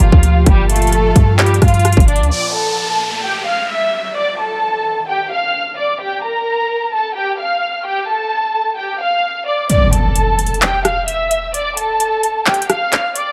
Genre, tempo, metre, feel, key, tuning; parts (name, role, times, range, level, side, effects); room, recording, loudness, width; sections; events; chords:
hip hop, trap; 130 BPM; 4/4; half-time; D minor; A4 = 440 Hz
warm symphonic violin section; melody; 0.0-13.3 s; G3 to F6; -19 LUFS; equal; low-pass filter
airy breathy pad; sustained chords; 0.0-2.3 s; Bb2 to G4; -25 LUFS; equal; chorus
clean 808-style bass; bass; 0.0-2.3 s; G1 to G2; -15 LUFS; equal
trap drum kit; drums; 0.0-2.3, 9.7-13.3 s; handclaps, hi-hat, kick drum, rim click; -16 LUFS; equal; overdrive
breathy silver concert flute; second line; 0.7-0.9 s; F5; -35 LUFS; equal
downlifter and impact; sound effects; 2.3-6.0, 9.7-11.5 s; -22 LUFS; equal
light reverb, digital ambience; -16 LUFS; mono
0.0-2.3 A section; 2.3-9.7 B section; 9.7-13.3 C section
kick muted 9.7-13.3; impact 9.7-11.5
0.0 Gm7; 2.3 Dm; 6.0 Gm7; 9.7 Dm